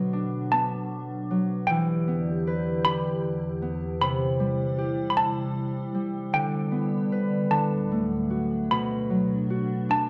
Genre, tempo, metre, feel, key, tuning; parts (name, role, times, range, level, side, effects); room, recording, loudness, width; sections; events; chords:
children's music, lullaby; 51 BPM (dotted quarters); 6/8; rubato; A4 = 443 Hz
malleted handbells; melody; 0.0-10.1 s; G5 to B5; -28 LUFS; equal
Celtic harp; accompaniment; 0.0-10.1 s; B2 to B4; -29 LUFS; equal
evolving wavetable pad; sustained chords; 0.0-10.1 s; D2 to G4; -33 LUFS; equal; chorus, built-in reverb
wet recital hall reverb, RT60 1.5 s; dark, warm production; -26 LUFS; mono
0.0-10.1 A section
0.0 Bm; 1.7 Em7; 4.0 C; 6.3 G/D; 7.5 D; 8.7 Bm